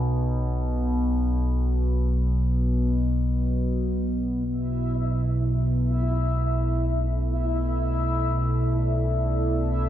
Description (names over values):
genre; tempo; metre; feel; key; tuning
dark ambient drone; free time; none; none; B minor; A4 = 440 Hz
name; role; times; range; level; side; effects
analog drone; drone; 0.0-9.9 s; B1 to B2; -23 LUFS; equal; chorus
dark analog pad; sustained chords; 4.5-9.9 s; B3 to D5; -37 LUFS; equal; chorus
bubbling stepped-filter texture; texture; 4.7-9.9 s; E4 to E5; -29 LUFS; right 1 dB; chorus, built-in reverb
room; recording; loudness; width
light reverb; nothing above 7.9 kHz; -22 LUFS; side -11 dB against mid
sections
0.0-4.5 A section; 4.5-9.9 B section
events
none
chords
0.0 N.C.; 4.5 Bm7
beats
free time